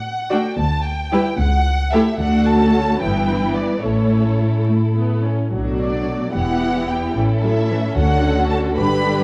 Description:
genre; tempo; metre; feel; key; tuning
quick classical-period movement for string orchestra; 74 BPM (dotted quarters); 6/8; rubato; D major; A4 = 444 Hz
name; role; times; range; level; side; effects
warm studio violin section; melody; 0.0-9.2 s; C#5 to B5; -27 LUFS; equal; none
warm studio cello section; bass; 0.0-9.2 s; C#2 to B2; -24 LUFS; equal; none
warm studio violin section; second line; 0.3-9.2 s; D4 to D5; -26 LUFS; equal; none
clear studio viola section; accompaniment; 0.3-9.2 s; D3 to E4; -24 LUFS; equal; none
warm studio double bass section; bass; 0.6-9.2 s; E1 to D2; -25 LUFS; equal; none
room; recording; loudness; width
moderate recital hall reverb, RT60 1.5 s; dark, warm production, vinyl crackle; -18 LUFS; mono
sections
0.0-9.2 A section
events
none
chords
0.0 D; 0.6 Em7/D; 1.4 A/C#; 2.2 D; 3.0 Em/G; 3.8 A; 5.5 Bm7; 6.4 Em; 7.2 A; 8.0 D

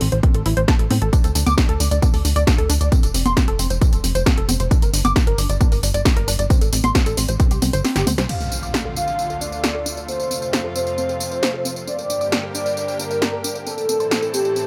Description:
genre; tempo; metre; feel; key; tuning
uplifting trance; 134 BPM; 4/4; straight; D minor; A4 = 440 Hz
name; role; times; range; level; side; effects
tight sequenced synth; arpeggios; 0.0-14.7 s; C4 to D6; -28 LUFS; equal; chorus, sidechain pumping, delay
plucky analog bass; bass; 0.0-8.3 s; F1 to A2; -23 LUFS; equal; sidechain pumping
punchy analog drum machine; drums; 0.0-14.7 s; congas, crash cymbal, hi-hat, snare drum, tambourine; -26 LUFS; equal; overdrive
electronic kick drum; drums; 0.2-7.5 s; none; -19 LUFS; equal; none
warm velvety synth lead; second line; 8.3-14.7 s; G4 to F5; -25 LUFS; equal; chorus, cassette tape, tape echo
lush unison pad; sustained chords; 8.3-14.7 s; D2 to A4; -32 LUFS; equal; chorus, sidechain pumping
impact; sound effects; 8.3-10.1 s; none; -32 LUFS; equal; none
room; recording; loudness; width
little or no reverb; none; -19 LUFS; mono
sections
0.0-8.3 A section; 8.3-14.7 B section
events
kick drops out 7.8-8.3; drum fill 7.8-8.3; band accent 8.2; impact 8.3-10.1; filter sweep on synth arpeggio sound 8.3-14.7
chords
0.0 Am; 1.1 D5; 2.9 F; 4.7 Gm; 6.5 Am; 7.4 C5; 8.3 Dm; 10.1 F; 11.9 Gm; 13.7 Am

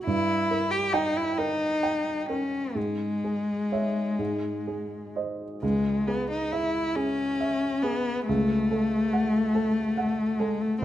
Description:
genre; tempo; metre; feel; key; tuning
classical, romantic duo for cello and grand piano; 41-48 BPM (dotted quarters); 6/8; rubato; C# minor; A4 = 440 Hz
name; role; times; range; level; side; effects
dark baby grand piano; accompaniment; 0.0-10.8 s; C2 to G5; -30 LUFS; right 2 dB; none
rich cello; melody; 0.1-10.8 s; G#3 to G4; -26 LUFS; left 1 dB; none
room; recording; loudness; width
moderate recital hall reverb, RT60 1.4 s; close, detailed microphones; -24 LUFS; side -12 dB against mid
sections
0.0-10.8 A section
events
none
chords
0.1 Gm6; 2.8 C#m/G#; 4.2 G#; 5.6 C#m; 8.3 F#m/C#

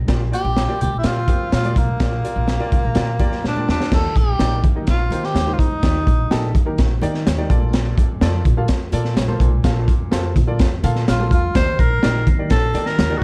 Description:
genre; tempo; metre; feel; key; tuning
uptempo 1960s-style soul; 126 BPM; 4/4; straight; Bb major; A4 = 441 Hz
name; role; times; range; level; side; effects
upright bass; bass; 0.0-13.2 s; Bb1 to Eb3; -24 LUFS; equal; none
clear upright piano; accompaniment; 0.1-13.2 s; Bb2 to F5; -29 LUFS; equal; none
crunchy breakbeat drum kit; drums; 0.1-13.1 s; crash cymbal, hi-hat, kick drum, snare drum; -21 LUFS; equal; none
congas; percussion; 0.1-13.2 s; none; -33 LUFS; equal; none
breathy tenor saxophone; melody; 0.3-6.5, 11.1-13.2 s; Bb3 to C5; -25 LUFS; equal; none
glockenspiel with rubber mallets; second line; 0.3-3.4, 11.1-13.2 s; Bb5 to C7; -35 LUFS; equal; plate reverb, tape echo
room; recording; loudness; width
light reverb; dark, warm production; -18 LUFS; mono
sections
0.0-3.9 A section; 3.9-13.2 B section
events
drum fill 3.4-3.9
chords
0.1 Bb6; 3.9 Ebmaj7; 7.5 Bbmaj7; 11.6 Ebmaj7

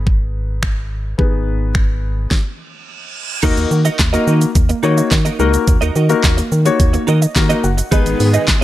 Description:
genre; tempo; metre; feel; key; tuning
dance-pop; 107 BPM; 4/4; straight; unclear; A4 = 440 Hz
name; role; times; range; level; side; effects
warm baby grand piano; accompaniment; 0.0-8.6 s; A#3 to A#5; -19 LUFS; left 6 dB; sidechain pumping
organ-like FM bass; bass; 0.0-8.6 s; F#1 to D#3; -16 LUFS; equal; sidechain pumping
pop drum kit; drums; 0.1-8.6 s; crash cymbal, finger snaps, handclaps, hi-hat, kick drum, shaker, snare drum; -16 LUFS; equal; none
reverse cymbal; sound effects; 2.7-3.4 s; none; -27 LUFS; right 7 dB; none
warbly dusty pluck; arpeggios; 3.4-8.4 s; D#3 to D#5; -26 LUFS; right 5 dB; chorus, sidechain pumping, digital delay
direct-recorded clean electric guitar; riff; 3.4-8.6 s; D#4 to D#5; -22 LUFS; right 6 dB; ensemble chorus
supersaw chords; sustained chords; 7.9-8.6 s; D#3 to G#4; -22 LUFS; right 1 dB; sidechain pumping
room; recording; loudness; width
little or no reverb; dark, warm production; -13 LUFS; side -14 dB against mid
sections
0.0-3.4 A section; 3.4-8.6 B section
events
stop 2.3-3.4; reverse cymbal 2.7-3.4; grand piano fill 7.1-7.9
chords
0.0 G#m; 3.4 D#m; 7.9 G#m

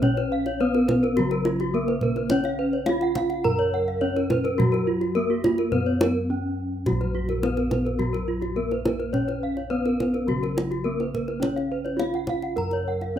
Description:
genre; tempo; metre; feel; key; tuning
Balinese gamelan; 105 BPM; 4/4; straight; Bb pelog; A4 = 440 Hz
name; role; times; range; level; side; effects
gamelan-type bronze metallophone; melody; 0.0-13.2 s; Gb3 to Bb4; -26 LUFS; right 1 dB; plate reverb
gamelan-type bronze metallophone; arpeggios; 0.0-13.2 s; Gb4 to Bb5; -29 LUFS; left 7 dB; plate reverb
gamelan-type bossed gongs; bass; 0.0-13.2 s; Bb1 to Gb4; -30 LUFS; equal; none
kendang; percussion; 0.0-13.1 s; none; -27 LUFS; equal; none
gamelan-type bronze metallophone; arpeggios; 0.3-13.0 s; F4 to Gb5; -29 LUFS; right 6 dB; plate reverb
room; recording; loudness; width
wet studio reverb, RT60 0.6 s; rough home demo mix; -22 LUFS; side -10 dB against mid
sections
0.0-13.2 A section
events
break 6.0-6.9; drum fill 6.2-6.9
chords
none

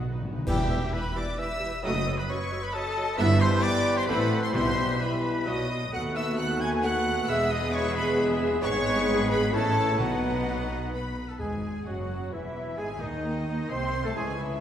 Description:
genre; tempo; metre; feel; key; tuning
classical, dramatic, fast romantic movement for symphony orchestra; 131 BPM; 3/4; straight; E minor, E major from 5.9 s; A4 = 440 Hz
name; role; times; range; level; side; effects
warm oboe; second line; 0.0-14.6 s; D#4 to E5; -40 LUFS; left 1 dB; none
clear symphonic viola section; accompaniment; 0.0-14.6 s; D#3 to B4; -36 LUFS; right 1 dB; none
rich symphonic double bass section; bass; 0.0-14.6 s; E1 to D#2; -33 LUFS; right 2 dB; none
timpani; percussion; 0.0-1.1, 4.5-5.2, 10.0-12.1 s; E2 to B2; -35 LUFS; equal; none
rich symphonic violin section; melody; 0.5-14.6 s; D#5 to G#6; -35 LUFS; left 2 dB; none
clear clarinet; second line; 0.5-14.5 s; D#4 to B#4; -37 LUFS; left 1 dB; none
concert flute; second line; 0.5-14.6 s; F#4 to C#6; -35 LUFS; left 1 dB; none
rich chamber violin section; second line; 0.5-14.6 s; D#4 to G5; -40 LUFS; left 3 dB; none
dark bassoon; accompaniment; 0.5-14.6 s; D#3 to B#3; -34 LUFS; left 1 dB; none
mellow French horn section; sustained chords; 0.5-14.3 s; D#3 to G#4; -34 LUFS; left 2 dB; none
warm trombone section; sustained chords; 0.5-14.3 s; A2 to B#3; -37 LUFS; right 1 dB; none
clear trumpet; stabs; 0.5-14.3 s; D#4 to G#5; -33 LUFS; right 1 dB; none
rich symphonic cello section; bass; 0.5-14.6 s; C#2 to B#2; -33 LUFS; right 1 dB; none
clash cymbals and concert bass drum; percussion; 0.5-1.3 s; none; -36 LUFS; equal; none
room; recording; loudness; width
wet scoring stage reverb, RT60 1.6 s; heard from further back in the room; -24 LUFS; side -10 dB against mid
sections
0.5-11.4 A section; 11.4-14.6 B section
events
timpani fill 0.0-0.5; band accent 0.5-0.9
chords
0.5 Em; 1.8 D#dim/F#; 3.2 Em/G; 4.1 Am; 4.5 Em/B; 5.5 B; 5.9 B7/D#; 7.3 E; 8.6 G#m; 9.5 A; 10.0 B; 11.4 E; 12.8 G#

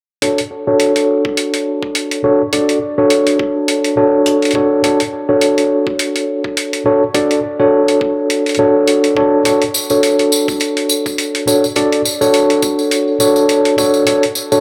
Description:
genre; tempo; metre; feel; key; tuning
glitch hop; 104 BPM; 4/4; swing 56% on 16ths; unclear; A4 = 441 Hz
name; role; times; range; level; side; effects
tine electric piano; stabs; 0.2-14.6 s; D4 to D5; -15 LUFS; equal; sidechain pumping, low-pass filter, tape echo
electronic hi-hat; drums; 0.2-14.3 s; none; -22 LUFS; equal; none
electronic kick drum; drums; 0.2-14.2 s; none; -28 LUFS; equal; high-pass filter on kick
tambourine; percussion; 9.5-14.6 s; none; -22 LUFS; equal; tape echo
room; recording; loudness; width
wet spring reverb, RT60 1.4 s, digital ambience; echo-heavy mix; -14 LUFS; mono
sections
0.2-14.6 A section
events
filter sweep on tine electric piano 0.2-14.6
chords
0.2 Dmaj7

